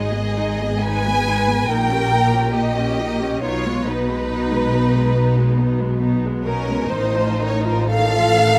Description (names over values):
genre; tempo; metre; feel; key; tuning
classical, slow romantic movement for string orchestra; 57-71 BPM; 4/4; rubato; unclear; A4 = 440 Hz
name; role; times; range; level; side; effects
rich studio violin section; melody; 0.0-8.6 s; Db4 to Cb5; -28 LUFS; equal; none
rich studio violin section; second line; 0.0-8.6 s; Bb4 to Ab5; -24 LUFS; equal; none
rich studio viola section; accompaniment; 0.0-8.6 s; Eb3 to Ab4; -27 LUFS; equal; none
rich studio double bass section; bass; 0.0-8.6 s; Ab1 to Cb2; -25 LUFS; equal; none
warm studio cello section; bass; 0.0-8.6 s; Ab2 to Cb3; -27 LUFS; equal; none
room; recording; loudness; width
light reverb; close, detailed microphones; -19 LUFS; mono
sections
0.0-8.6 A section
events
none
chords
0.0 Abm; 1.7 Eb7/Bb; 3.4 Abm/Cb; 6.9 F7/A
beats
0.81 1.69 2.54 | 3.43 4.29 5.15 6.01 | 6.89 7.89